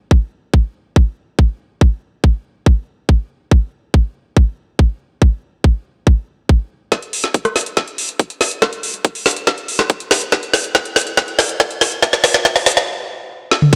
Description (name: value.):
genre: trance.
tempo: 141 BPM.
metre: 4/4.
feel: straight.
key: none.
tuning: none.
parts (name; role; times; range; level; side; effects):
electronic kick drum; drums; 0.1-13.8 s; none; -13 LUFS; equal; high-pass filter on kick.
drum and bass drum kit; drums; 6.9-13.8 s; crash cymbal, hi-hat, rim click, snare drum, toms; -17 LUFS; equal; none.
room: light reverb.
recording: none.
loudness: -17 LUFS.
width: mono.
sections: 0.0-6.9 A section; 6.9-13.7 B section.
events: build-up 6.9-13.7; drum fill 6.9-12.9, 13.5; stop 12.9-13.7.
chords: none.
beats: | 0.11 0.54 0.96 1.39 | 1.81 2.24 2.66 3.09 | 3.51 3.94 4.37 4.79 | 5.22 5.64 6.07 6.49 | 6.92 7.34 7.77 8.20 | 8.62 9.05 9.47 9.90 | 10.32 10.75 11.17 11.60 | 12.03 12.45 12.88 13.30 | 13.73.